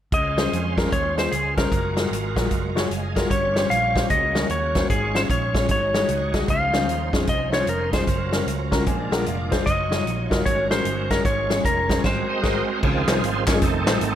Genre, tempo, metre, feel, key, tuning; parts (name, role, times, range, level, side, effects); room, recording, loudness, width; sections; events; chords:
uptempo gospel; 151 BPM; 4/4; swing 64% on 8ths; Db major; A4 = 441 Hz
clean lap steel guitar; melody; 0.1-12.4 s; Ab4 to F5; -24 LUFS; left 1 dB
warm grand piano; accompaniment; 0.1-14.0 s; G2 to Bb5; -28 LUFS; left 3 dB
bright tonewheel organ; sustained chords; 0.1-14.2 s; Eb3 to Bb5; -29 LUFS; right 5 dB; fast rotary speaker, overdrive, chorus vibrato
fingered electric bass; bass; 0.1-14.2 s; F1 to F2; -28 LUFS; right 1 dB
swinging big-band drum kit; drums; 0.1-14.1 s; crash cymbal, hi-hat, kick drum, snare drum; -24 LUFS; equal
group handclap; percussion; 13.1-13.9 s; -31 LUFS; left 1 dB
moderate large studio reverb, RT60 1.3 s; faint mains hum; -19 LUFS; side -10 dB against mid
0.1-12.8 A section; 12.8-14.2 B section
tonewheel organ fill 2.7-3.3; grand piano fill 8.5-9.7; band accent 12.0-12.8; tonewheel organ solo 12.8-14.2
0.1 Dbmaj7; 1.7 Gbmaj9; 3.3 Gm7b5; 4.1 Gb/Db; 4.9 Db/Ab; 5.7 Ab7sus4; 6.5 Dbmaj9; 8.1 Gbmaj7; 8.9 Bb7; 9.7 Ebm9/Gb; 10.5 Ab9sus4; 11.2 Db/Ab; 12.0 Ab9; 12.8 Dbmaj9; 13.6 F7